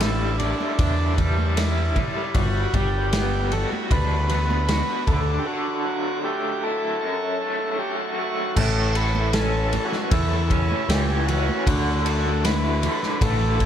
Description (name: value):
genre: psychedelic rock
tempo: 77 BPM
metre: 4/4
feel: straight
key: A mixolydian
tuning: A4 = 439 Hz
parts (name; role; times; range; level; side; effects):
- combo organ; melody; 0.0-13.7 s; D4 to B4; -28 LUFS; equal; dub echo
- bright tonewheel organ; sustained chords; 0.0-13.7 s; D5 to D6; -36 LUFS; right 2 dB; slow rotary speaker, overdrive
- raw garage guitar; riff; 0.0-13.7 s; F#2 to A4; -26 LUFS; equal; overdrive, tremolo, dub echo
- growling picked electric bass; bass; 0.0-13.7 s; G1 to E2; -23 LUFS; equal; overdrive
- vintage drum kit; drums; 0.0-13.7 s; crash cymbal, kick drum, ride cymbal, snare drum; -26 LUFS; equal; none
- congas; percussion; 0.4-13.6 s; none; -35 LUFS; right 7 dB; dub echo
room: little or no reverb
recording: echo-heavy mix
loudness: -20 LUFS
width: side -9 dB against mid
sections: 0.0-8.6 A section; 8.6-13.7 B section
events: break 5.5-8.6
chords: 0.0 A7sus4; 2.3 Gmaj7; 5.1 Dadd9; 7.0 F#m; 8.6 A; 11.7 Dadd9